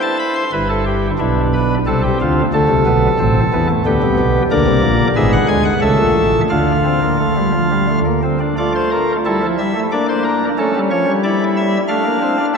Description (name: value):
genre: classical, baroque-style 4-part fugue for pipe organ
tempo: 90 BPM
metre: 3/4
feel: straight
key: D minor from 4.5 s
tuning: A4 = 440 Hz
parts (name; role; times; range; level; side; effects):
- pipe organ, cornet; solo; 0.0-12.6 s; G1 to C6; -13 LUFS; equal; none
room: wet cathedral reverb, RT60 4.7 s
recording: recorded in a church or concert hall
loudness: -13 LUFS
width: side -5 dB against mid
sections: 0.5-8.6 A section; 8.6-12.6 B section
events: none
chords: 0.0 C/E; 0.5 Em/G; 1.9 Am/C; 2.5 D5; 3.9 G; 4.5 Bbadd9; 5.2 E7/G#; 5.8 A; 6.5 Dm; 8.6 Dm/A; 9.9 Bbadd9; 10.6 A; 11.9 Dm/A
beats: | 0.53 1.20 1.87 | 2.53 3.19 3.85 | 4.51 5.16 5.82 | 6.50 7.19 7.88 | 8.57 9.25 9.92 | 10.57 11.23 11.89 | 12.54